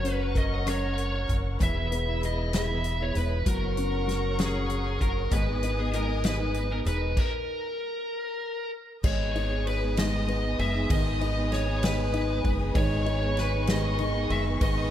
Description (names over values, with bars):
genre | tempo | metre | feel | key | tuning
six-eight pop ballad | 65 BPM (dotted quarters) | 6/8 | straight | G# minor | A4 = 439 Hz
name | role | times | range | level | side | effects
high-gain lead guitar | melody | 0.0-14.9 s | G#4 to E5 | -31 LUFS | right 1 dB | distortion, analog delay
dark baby grand piano | accompaniment | 0.0-14.9 s | D#3 to A#4 | -34 LUFS | left 4 dB | none
muted studio string section | sustained chords | 0.0-14.9 s | B3 to D#6 | -37 LUFS | left 2 dB | none
picked steel-string acoustic guitar | arpeggios | 0.0-14.9 s | G#2 to B4 | -35 LUFS | right 2 dB | none
deep dub fingered electric bass | bass | 0.0-14.9 s | E1 to G#1 | -29 LUFS | equal | none
natural country drum kit | drums | 0.0-14.8 s | crash cymbal, hi-hat, kick drum, ride cymbal, rim click, snare drum | -30 LUFS | equal | none
room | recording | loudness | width
moderate plate reverb, RT60 2.2 s | dreamy mix soaked in reverb | -25 LUFS | side -11 dB against mid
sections
0.0-9.0 A section; 9.0-14.9 B section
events
stop 7.2-9.0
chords
0.0 F#; 1.6 E; 3.5 F#; 5.3 G#m; 7.2 N.C.; 9.0 G#m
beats
0.67 | 1.60 2.54 | 3.46 4.39 | 5.32 6.24 | 7.17 8.10 | 9.04 9.98 | 10.90 11.83 | 12.75 13.68 | 14.61